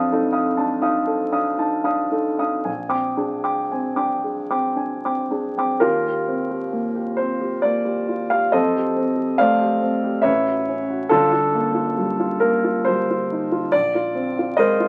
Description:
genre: classical, impressionist solo piano.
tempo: 55-71 BPM.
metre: 3/4.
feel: rubato.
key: Eb lydian.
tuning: A4 = 440 Hz.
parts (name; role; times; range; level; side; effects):
warm baby grand piano; solo; 0.0-14.9 s; G1 to Eb6; -21 LUFS; equal; none.
room: moderate studio reverb, RT60 0.5 s.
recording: very old 78 rpm record, vinyl crackle.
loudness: -21 LUFS.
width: mono.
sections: 0.0-5.8 A section; 5.8-14.9 B section.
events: none.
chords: 0.0 F6; 2.7 Bb13; 5.8 Eb69; 8.5 F13; 10.3 A69; 11.1 Gm7; 13.7 Bb11.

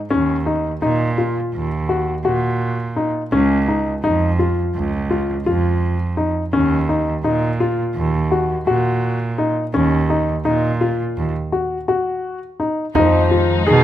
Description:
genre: contemporary instrumental, chamber music in an uneven meter.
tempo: 168 BPM (eighths).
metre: 9/8.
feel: straight.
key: Eb minor.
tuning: A4 = 440 Hz.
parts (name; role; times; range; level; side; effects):
dark grand piano; arpeggios; 0.1-13.8 s; Db4 to Ab4; -19 LUFS; left 2 dB; none.
rich cello; bass; 0.1-13.8 s; Db2 to Cb3; -20 LUFS; right 3 dB; none.
dark chamber string section; sustained chords; 12.9-13.8 s; Eb3 to Eb4; -22 LUFS; left 3 dB; none.
frame drum; percussion; 12.9-13.5 s; none; -24 LUFS; right 6 dB; none.
mellow French horn; second line; 13.0-13.8 s; Eb3 to F3; -20 LUFS; left 5 dB; none.
room: light reverb.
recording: close, detailed microphones.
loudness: -16 LUFS.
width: side -12 dB against mid.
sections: 0.0-12.9 A section.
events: break 11.3-12.9.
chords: 0.1 Ebm; 3.3 Dbadd9; 6.5 Ebm; 12.9 Fm7b5.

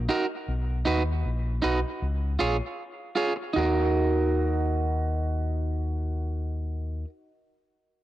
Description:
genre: dub reggae.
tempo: 78 BPM.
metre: 4/4.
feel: straight.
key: Eb minor.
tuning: A4 = 444 Hz.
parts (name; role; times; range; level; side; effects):
fingered electric bass; bass; 0.0-7.0 s; Bb1 to D#2; -27 LUFS; left 1 dB; none.
electric guitar at the edge of break-up; accompaniment; 0.1-7.1 s; Eb4 to Db5; -27 LUFS; right 2 dB; dub echo.
room: moderate spring reverb, RT60 2.5 s.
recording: none.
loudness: -25 LUFS.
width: side -14 dB against mid.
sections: 0.0-3.6 A section; 3.6-6.6 B section.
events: none.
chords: 0.5 B; 2.0 Db; 3.6 Ebm.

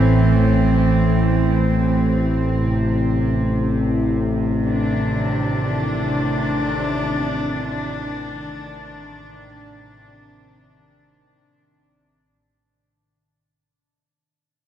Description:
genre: dark ambient drone.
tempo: free time.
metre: none.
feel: none.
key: unclear.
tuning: A4 = 439 Hz.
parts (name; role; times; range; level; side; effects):
warm studio cello section; sustained chords; 0.0-12.3 s; A2 to D4; -20 LUFS; right 1 dB; none.
analog drone; drone; 0.0-12.4 s; A1 to A2; -20 LUFS; equal; chorus.
quartz singing bowl; texture; 0.0-12.3 s; none; barely audible; none; none.
room: wet cathedral reverb, RT60 6.2 s.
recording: none.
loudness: -17 LUFS.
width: side -10 dB against mid.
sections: 0.0-12.3 A section.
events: fade-out 0.0-12.3.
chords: 0.0 Am; 2.6 Cmadd9.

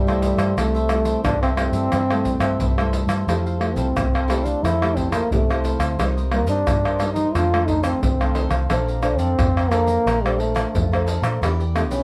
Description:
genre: samba and choro.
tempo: 88 BPM.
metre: 4/4.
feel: straight.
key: C major, F major from 3.3 s.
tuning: A4 = 439 Hz.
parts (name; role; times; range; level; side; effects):
breathy trombone; melody; 0.0-12.0 s; G3 to F4; -26 LUFS; equal; analog delay.
cavaquinho; accompaniment; 0.0-12.0 s; Eb4 to Bb5; -34 LUFS; equal; none.
nylon-string guitar; accompaniment; 0.0-12.0 s; F2 to C5; -30 LUFS; equal; none.
vintage muted fingered electric bass; bass; 0.0-12.0 s; Bb1 to Bb2; -25 LUFS; equal; none.
maracas, pandeiro, tamborim and surdo; percussion; 0.1-12.0 s; none; -26 LUFS; equal; none.
room: moderate studio ambience, RT60 0.5 s.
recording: heard from further back in the room.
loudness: -20 LUFS.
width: mono.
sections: 0.0-3.3 A section; 3.3-12.0 B section.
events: none.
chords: 0.0 C6; 3.3 Fmaj9; 6.0 Cm7; 7.4 F6; 8.7 Bbmaj9; 11.4 Em7.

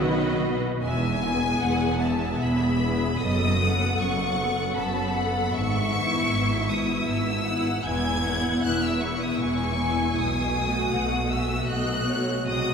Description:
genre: classical, slow romantic movement for string orchestra.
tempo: 77 BPM.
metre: 3/4.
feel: rubato.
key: E major.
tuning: A4 = 440 Hz.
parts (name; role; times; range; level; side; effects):
rich symphonic violin section; second line; 0.0-12.7 s; B4 to A5; -30 LUFS; left 1 dB; none.
warm symphonic viola section; accompaniment; 0.0-12.7 s; G#3 to A4; -28 LUFS; left 1 dB; none.
clear studio double bass section; bass; 0.0-12.7 s; E1 to B#1; -29 LUFS; right 1 dB; none.
rich symphonic cello section; bass; 0.0-12.7 s; E2 to D#3; -28 LUFS; right 1 dB; none.
rich symphonic violin section; melody; 0.8-12.7 s; G#5 to G#6; -29 LUFS; left 2 dB; none.
room: wet church reverb, RT60 3.7 s.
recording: none.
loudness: -22 LUFS.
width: side -6 dB against mid.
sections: 0.8-12.7 A section.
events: none.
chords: 0.0 B; 0.8 E; 3.2 B7/F#; 5.5 E/G#; 7.8 E; 10.2 B7.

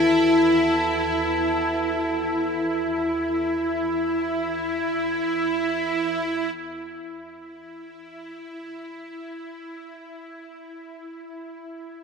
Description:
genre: dark ambient drone.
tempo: free time.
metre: none.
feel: none.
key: unclear.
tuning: A4 = 442 Hz.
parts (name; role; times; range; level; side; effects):
dark analog pad; sustained chords; 0.0-6.6 s; E4 to A5; -31 LUFS; equal; chorus, phaser.
gamelan-type bossed gongs; arpeggios; 0.0-1.8 s; D#2; -43 LUFS; left 1 dB; tape echo.
bowed-like drone; drone; 0.0-12.0 s; E4; -24 LUFS; equal; built-in reverb.
room: wet cathedral reverb, RT60 5.3 s.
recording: none.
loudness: -21 LUFS.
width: side -6 dB against mid.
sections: 0.0-6.6 A section; 6.6-12.0 B section.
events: none.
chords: 0.0 Esus2; 6.6 N.C..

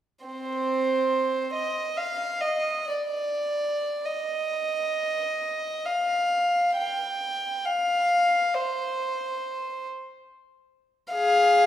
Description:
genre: classical, free, expressive piece for unaccompanied violin.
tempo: free time.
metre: none.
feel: none.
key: C minor.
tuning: A4 = 441 Hz.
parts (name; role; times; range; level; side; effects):
rich violin; solo; 0.3-11.7 s; C4 to G5; -23 LUFS; equal; none.
room: wet recital hall reverb, RT60 1.6 s.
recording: heard from further back in the room.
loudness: -24 LUFS.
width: side -11 dB against mid.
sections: 0.3-4.0 A section; 4.0-11.7 B section.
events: none.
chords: none.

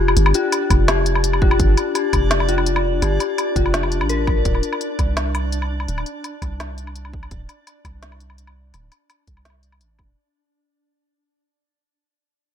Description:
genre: half-time drum and bass.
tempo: 168 BPM.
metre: 4/4.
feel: half-time.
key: unclear.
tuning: A4 = 440 Hz.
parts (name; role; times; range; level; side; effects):
dark detuned synth bell; arpeggios; 0.0-4.5 s; F4 to Bb4; -21 LUFS; left 6 dB; chorus, vintage 12-bit sampler grit, ping-pong delay.
long sustained 808-style bass; bass; 0.0-10.2 s; D1 to C2; -21 LUFS; right 1 dB; none.
backwards swelling texture; texture; 0.0-10.2 s; D4 to D5; -28 LUFS; right 1 dB; built-in reverb.
organic electronic drum kit; drums; 0.1-10.1 s; hi-hat, snare drum, woodblock; -24 LUFS; left 1 dB; none.
electronic kick drum; drums; 0.7-10.1 s; none; -20 LUFS; right 1 dB; none.
room: light reverb, digital ambience.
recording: none.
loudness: -17 LUFS.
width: side -9 dB against mid.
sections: 0.0-10.2 A section.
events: fade-out 0.0-10.2; filter sweep on 808-style bass 0.0-10.2.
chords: 0.0 G5; 4.5 D5.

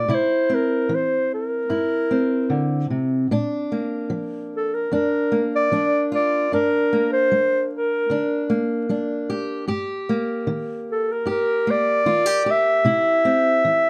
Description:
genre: folk.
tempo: 75 BPM.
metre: 4/4.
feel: straight.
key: unclear.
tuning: A4 = 439 Hz.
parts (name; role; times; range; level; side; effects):
warm clarinet; melody; 0.0-13.9 s; A4 to E5; -22 LUFS; equal; none.
fingerpicked steel-string acoustic guitar; accompaniment; 0.0-13.9 s; F2 to G4; -25 LUFS; equal; none.
room: light reverb.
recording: none.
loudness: -21 LUFS.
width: mono.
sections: 0.0-13.9 A section.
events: none.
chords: 0.1 C; 3.3 Bb; 6.5 Gm; 9.7 Eb/G; 12.9 C.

